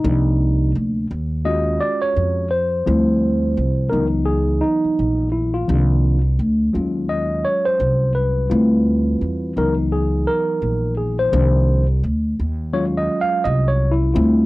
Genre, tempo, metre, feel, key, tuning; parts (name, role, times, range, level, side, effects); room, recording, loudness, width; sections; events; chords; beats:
hip hop; 85 BPM; 4/4; swing 60% on 16ths; A4 = 441 Hz
tine electric piano; accompaniment; 0.0-14.5 s; C3 to F5; -19 LUFS; equal; auto-pan, cassette tape
upright bass; bass; 0.0-14.5 s; Bb1 to F2; -18 LUFS; equal
light reverb; home recording on cassette; -16 LUFS; side -19 dB against mid
0.0-14.5 A section
tine electric piano solo 0.0-14.5
0.0 Cm11; 1.1 Ebm11; 2.9 Dm11; 3.9 C#m11; 5.7 Cm11; 6.7 Ebm11; 8.5 Dm11; 9.6 C#m11; 11.3 Cm11; 12.4 Ebm11
| 0.04 0.74 1.45 2.16 | 2.86 3.57 4.27 4.98 | 5.68 6.39 7.10 7.80 | 8.51 9.21 9.92 10.63 | 11.33 12.04 12.74 13.45 | 14.16